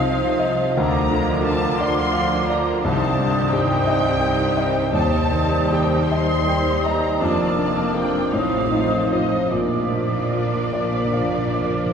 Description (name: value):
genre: classical, romantic movement for piano and orchestra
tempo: 48-59 BPM (dotted quarters)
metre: 12/8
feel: rubato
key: Bb major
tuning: A4 = 444 Hz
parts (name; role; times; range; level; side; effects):
- clear grand piano; melody; 0.0-11.9 s; C2 to G5; -23 LUFS; left 1 dB; none
- warm symphonic violin section; melody; 0.0-11.9 s; D5 to C6; -28 LUFS; left 3 dB; none
- mellow large flute ensemble; second line; 0.0-11.9 s; D6 to Eb6; -28 LUFS; right 2 dB; none
- warm clarinet; second line; 0.0-11.9 s; Bb4 to C5; -30 LUFS; right 1 dB; none
- warm symphonic violin section; second line; 0.0-11.9 s; F4 to D5; -30 LUFS; left 3 dB; none
- mellow bassoon; accompaniment; 0.0-11.9 s; F3 to G3; -29 LUFS; right 3 dB; none
- rich symphonic viola section; accompaniment; 0.0-11.9 s; Eb3 to Eb4; -29 LUFS; right 2 dB; none
- dark French horn section; sustained chords; 0.0-11.9 s; F3 to Eb4; -28 LUFS; left 2 dB; none
- clear symphonic double bass section; bass; 0.0-11.8 s; F1 to Eb2; -28 LUFS; right 3 dB; none
- rich symphonic cello section; bass; 0.0-11.8 s; Eb2 to D3; -29 LUFS; right 2 dB; none
- timpani; percussion; 9.5-11.9 s; Bb2; -32 LUFS; left 1 dB; none
room: wet cathedral reverb, RT60 5.7 s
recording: recorded in a church or concert hall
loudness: -18 LUFS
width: side -7 dB against mid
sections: 0.0-11.9 A section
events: timpani fill 9.5-11.9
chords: 0.0 F7(no3)/C; 0.8 Bb/D; 2.8 Cm; 4.9 Cm/Eb; 7.2 Bb/F; 8.3 F7/A; 9.5 Bb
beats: | 0.77 1.80 2.85 3.88 | 4.93 6.11 7.20 8.33 | 9.51 10.74 11.93